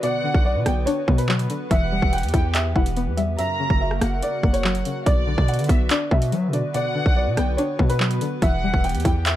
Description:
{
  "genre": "hip hop, drill",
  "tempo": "143 BPM",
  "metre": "4/4",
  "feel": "half-time",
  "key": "B harmonic minor",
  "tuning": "A4 = 440 Hz",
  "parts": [
    { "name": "dark baby grand piano", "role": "melody", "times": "0.0-9.4 s", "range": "B4 to G5", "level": "-27 LUFS", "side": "equal", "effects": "low-pass filter, ping-pong delay" },
    { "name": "warm studio violin section", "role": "second line", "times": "0.0-9.2 s", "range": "D5 to A#5", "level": "-29 LUFS", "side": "right 1 dB", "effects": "ping-pong delay" },
    { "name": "string-like resonator pluck", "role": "accompaniment", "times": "0.0-9.4 s", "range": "F#2 to E5", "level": "-27 LUFS", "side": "left 3 dB", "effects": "chorus, low-pass filter" },
    { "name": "hollow soft pad", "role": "sustained chords", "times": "0.0-9.4 s", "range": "C#3 to B4", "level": "-31 LUFS", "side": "equal", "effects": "chorus" },
    { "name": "drill drum kit", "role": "drums", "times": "0.0-9.4 s", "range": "handclaps, hi-hat, kick drum, rim click", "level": "-22 LUFS", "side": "equal", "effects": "none" },
    { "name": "hard-hitting 808-style bass", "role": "bass", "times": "0.3-9.4 s", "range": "E1 to F#3", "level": "-23 LUFS", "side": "equal", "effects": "none" }
  ],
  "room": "little or no reverb",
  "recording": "dark, warm production",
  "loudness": "-19 LUFS",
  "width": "side -13 dB against mid",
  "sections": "0.0-9.4 A section",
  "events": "none",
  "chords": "0.0 Bm; 1.7 Em; 3.4 F#; 5.1 Bm; 8.4 Em"
}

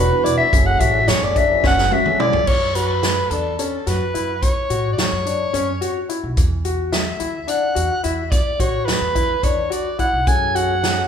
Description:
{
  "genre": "progressive instrumental, band music in an uneven meter",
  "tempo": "215 BPM (eighths)",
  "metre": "7/8",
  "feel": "straight",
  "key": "F# minor",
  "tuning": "A4 = 440 Hz",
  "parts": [
    { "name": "growling soprano saxophone", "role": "melody", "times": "0.0-11.1 s", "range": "A4 to G#5", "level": "-20 LUFS", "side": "equal", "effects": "none" },
    { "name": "tonewheel organ", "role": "accompaniment", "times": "0.0-2.4, 10.3-11.1 s", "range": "E3 to B4", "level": "-26 LUFS", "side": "right 2 dB", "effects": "stopped rotary speaker" },
    { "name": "clear baby grand piano", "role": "arpeggios", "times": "0.0-10.9 s", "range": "C#4 to F#4", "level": "-24 LUFS", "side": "left 5 dB", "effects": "none" },
    { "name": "upright bass", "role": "bass", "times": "0.0-11.0 s", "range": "E1 to A2", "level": "-24 LUFS", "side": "right 1 dB", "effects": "none" },
    { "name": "swinging big-band drum kit", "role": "drums", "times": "0.3-11.0 s", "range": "crash cymbal, hi-hat, kick drum, snare drum, toms", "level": "-21 LUFS", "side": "equal", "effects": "none" }
  ],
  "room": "wet large studio reverb, RT60 1.4 s",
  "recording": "band playing live in one room",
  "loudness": "-16 LUFS",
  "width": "side -8 dB against mid",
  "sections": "0.0-2.5 A section; 2.5-11.1 B section",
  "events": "soprano saxophone solo 0.0-2.5; drum fill 1.6-2.5",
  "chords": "0.0 E7(no3); 0.5 F#madd9; 2.5 F#5; 6.4 E7(no3); 10.3 F#madd9"
}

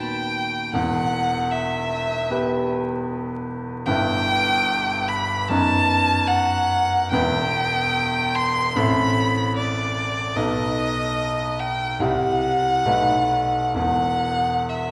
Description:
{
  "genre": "classical, romantic duo for violin and grand piano",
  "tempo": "64-79 BPM",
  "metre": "4/4",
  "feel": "rubato",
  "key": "E minor",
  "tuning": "A4 = 439 Hz",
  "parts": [
    { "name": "rich violin", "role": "melody", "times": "0.0-14.9 s", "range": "D5 to C6", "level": "-24 LUFS", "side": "equal", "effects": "none" },
    { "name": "bright grand piano", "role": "accompaniment", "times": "0.0-14.9 s", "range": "D#1 to B4", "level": "-26 LUFS", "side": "equal", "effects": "none" }
  ],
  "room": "wet scoring stage reverb, RT60 1.5 s",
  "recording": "heard from further back in the room, vinyl crackle",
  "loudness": "-22 LUFS",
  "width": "mono",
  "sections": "0.0-14.9 A section",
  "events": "none",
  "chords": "0.0 B/D#; 0.7 Em; 3.9 Em/G; 5.5 B7/F#; 7.1 Em; 8.8 Am; 10.4 B7; 12.0 C; 12.9 B7; 13.8 N.C."
}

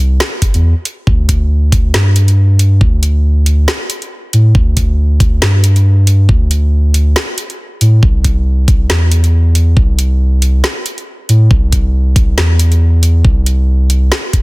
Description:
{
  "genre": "deep dubstep",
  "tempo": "138 BPM",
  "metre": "4/4",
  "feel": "swing 56% on 16ths, half-time",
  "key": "unclear",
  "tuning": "A4 = 440 Hz",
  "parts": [
    { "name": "soft dub sub bass", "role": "bass", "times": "0.0-14.1 s", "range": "C2 to A2", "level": "-9 LUFS", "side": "equal", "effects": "tube saturation" },
    { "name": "garage drum kit", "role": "drums", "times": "0.2-14.4 s", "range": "hi-hat, snare drum", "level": "-17 LUFS", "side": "equal", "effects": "none" },
    { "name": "electronic kick drum", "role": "drums", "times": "0.4-14.4 s", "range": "none", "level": "-11 LUFS", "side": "equal", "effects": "none" }
  ],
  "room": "little or no reverb",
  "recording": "dense, heavily limited modern master",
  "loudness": "-9 LUFS",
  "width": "side -23 dB against mid",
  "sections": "0.0-14.4 A section",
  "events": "kick drops out 0.6-1.1",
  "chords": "none"
}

